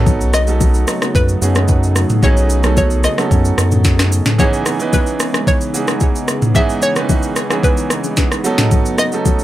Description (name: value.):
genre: amapiano.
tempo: 111 BPM.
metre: 4/4.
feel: straight.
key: unclear.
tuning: A4 = 440 Hz.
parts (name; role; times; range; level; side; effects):
clear baby grand piano; accompaniment; 0.0-9.4 s; D#3 to B4; -20 LUFS; right 4 dB; none.
lush unison pad; sustained chords; 0.0-9.4 s; C#3 to D#4; -23 LUFS; left 2 dB; chorus, sidechain pumping.
round analog bass; bass; 0.0-4.2 s; B1 to F#2; -15 LUFS; equal; none.
smooth R&B drum kit; drums; 0.1-9.4 s; kick drum, rim click, shaker, snare drum, toms; -16 LUFS; equal; overdrive.
congas and bongos; percussion; 0.1-9.4 s; none; -24 LUFS; left 8 dB; none.
hollow square pluck; melody; 0.3-9.4 s; B4 to E5; -20 LUFS; equal; chorus, digital delay.
room: little or no reverb.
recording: none.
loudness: -12 LUFS.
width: side -14 dB against mid.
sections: 0.0-9.4 A section.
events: none.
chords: 0.0 B9; 4.4 C#m9; 8.4 B9.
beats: | 0.07 0.61 1.15 1.69 | 2.23 2.77 3.31 3.85 | 4.39 4.93 5.47 6.01 | 6.55 7.09 7.63 8.17 | 8.71 9.26.